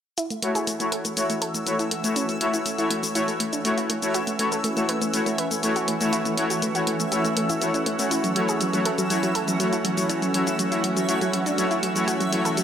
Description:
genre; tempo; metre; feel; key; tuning
progressive house; 121 BPM; 4/4; straight; A major; A4 = 441 Hz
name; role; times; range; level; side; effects
shimmering ambient pad; sustained chords; 0.7-12.6 s; E3 to F#4; -29 LUFS; right 2 dB; chorus, built-in reverb
analog pluck; arpeggios; 0.2-12.6 s; F#3 to B4; -28 LUFS; right 1 dB; chorus, tape echo
electronic hi-hat and shaker; drums; 0.2-12.6 s; none; -29 LUFS; left 2 dB; none
backwards swelling texture; texture; 1.1-12.6 s; E5 to E6; -34 LUFS; right 1 dB; built-in reverb
soft supersaw; stabs; 0.4-12.4 s; A3 to C#5; -26 LUFS; left 1 dB; low-pass filter, tape echo
riser; sound effects; 12.4-12.6 s; none; -39 LUFS; right 1 dB; none
room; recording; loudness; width
moderate lush hall reverb, RT60 1.9 s; none; -21 LUFS; side -8 dB against mid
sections
0.2-12.6 A section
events
filter sweep on synth pluck 0.2-12.6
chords
0.2 A6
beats
| 0.18 0.67 1.17 1.66 | 2.16 2.66 3.15 3.65 | 4.14 4.64 5.13 5.63 | 6.13 6.62 7.12 7.62 | 8.11 8.61 9.10 9.60 | 10.09 10.59 11.09 11.58 | 12.08 12.57

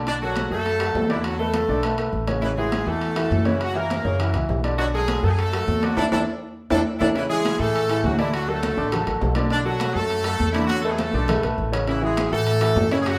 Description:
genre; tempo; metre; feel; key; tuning
latin, salsa; 203 BPM; 4/4; straight; A major; A4 = 440 Hz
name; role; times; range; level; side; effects
clear grand piano; accompaniment; 0.0-13.2 s; C#3 to D5; -28 LUFS; equal; none
upright bass; bass; 0.0-13.2 s; A1 to A2; -28 LUFS; equal; none
brilliant horn section; melody; 0.1-13.2 s; E3 to D5; -28 LUFS; equal; none
congas; percussion; 0.1-13.2 s; none; -31 LUFS; equal; none
timbales; percussion; 0.1-13.2 s; none; -33 LUFS; equal; none
room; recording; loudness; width
wet large studio reverb, RT60 0.9 s; band playing live in one room; -22 LUFS; mono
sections
0.0-7.2 A section; 7.2-13.2 A section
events
band accent 6.0-7.2; drum fill 6.7-7.2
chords
0.1 Bm7; 1.2 E7sus4; 2.4 A6; 3.6 F#7; 4.8 Bm7; 6.0 E7sus4; 7.2 Amaj7; 8.3 D; 9.5 Bm7; 10.7 E7sus4; 11.9 A6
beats
| 0.07 0.36 0.66 0.95 | 1.25 1.54 1.84 2.13 | 2.43 2.72 3.02 3.31 | 3.61 3.90 4.20 4.50 | 4.79 5.09 5.38 5.68 | 5.97 6.27 6.56 6.86 | 7.15 7.45 7.74 8.04 | 8.33 8.63 8.92 9.22 | 9.51 9.81 10.10 10.40 | 10.69 10.99 11.28 11.58 | 11.87 12.17 12.46 12.76 | 13.05

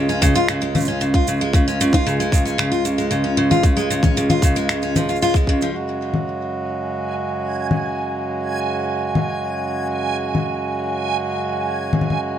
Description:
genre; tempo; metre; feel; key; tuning
folktronica; 114 BPM; 4/4; straight; unclear; A4 = 439 Hz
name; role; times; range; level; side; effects
hand-pumped harmonium; sustained chords; 0.0-12.4 s; Db2 to Gb4; -23 LUFS; right 1 dB; vintage 12-bit sampler grit, plate reverb
picked steel-string acoustic guitar; arpeggios; 0.0-5.7 s; Db3 to F4; -19 LUFS; equal; vintage 12-bit sampler grit, ping-pong delay, plate reverb
electronic cabasa, finger snaps and congas; drums; 0.1-12.2 s; none; -22 LUFS; left 2 dB; none
electronic kick drum; drums; 0.2-5.6 s; none; -16 LUFS; equal; none
backwards swelling texture; texture; 6.9-12.4 s; Ab5; -26 LUFS; right 3 dB; built-in reverb, plate reverb
room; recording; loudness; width
moderate small room reverb, RT60 0.5 s; none; -17 LUFS; side -10 dB against mid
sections
0.0-5.7 A section; 5.7-12.4 B section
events
none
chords
0.0 Db; 5.7 Gbsus2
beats
0.48 1.00 | 1.53 2.06 2.58 3.11 | 3.64 4.16 4.69 5.22 | 5.74 6.27 6.79 7.32 | 7.85 8.37 8.90 9.43 | 9.95 10.48 11.01 11.53 | 12.06

